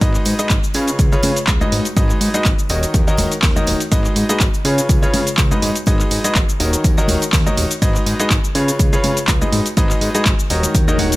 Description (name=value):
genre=piano house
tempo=123 BPM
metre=4/4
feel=swing 54% on 16ths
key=G# dorian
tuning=A4 = 440 Hz
part: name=clear grand piano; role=riff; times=0.0-11.2 s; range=C#3 to F#5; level=-20 LUFS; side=equal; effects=sidechain pumping, dub echo
part: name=fat analog bass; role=bass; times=0.0-11.2 s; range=D#1 to C#3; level=-20 LUFS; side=equal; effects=sidechain pumping
part: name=electronic kick drum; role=drums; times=0.0-10.9 s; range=none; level=-17 LUFS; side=equal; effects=overdrive
part: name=punchy analog drum machine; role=drums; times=0.0-11.2 s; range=handclaps, hi-hat, shaker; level=-21 LUFS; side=equal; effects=none
part: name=tambourine and congas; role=percussion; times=0.0-11.2 s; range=none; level=-27 LUFS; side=left 2 dB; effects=none
part: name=swell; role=sound effects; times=10.9-11.2 s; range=none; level=-25 LUFS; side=right 1 dB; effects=none
room=digital ambience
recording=none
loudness=-14 LUFS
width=side -19 dB against mid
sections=0.0-11.2 A section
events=swell 10.9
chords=0.0 G#m7; 0.7 C#7; 1.7 G#m7; 2.7 D#m7; 3.9 G#m7; 4.6 C#7; 5.6 G#m7; 6.6 D#m7; 7.8 G#m7; 8.6 C#7; 9.5 G#m7; 10.5 D#m7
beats=| 0.01 0.50 0.99 1.48 | 1.97 2.45 2.94 3.43 | 3.92 4.41 4.89 5.38 | 5.87 6.36 6.84 7.33 | 7.82 8.31 8.79 9.28 | 9.77 10.26 10.75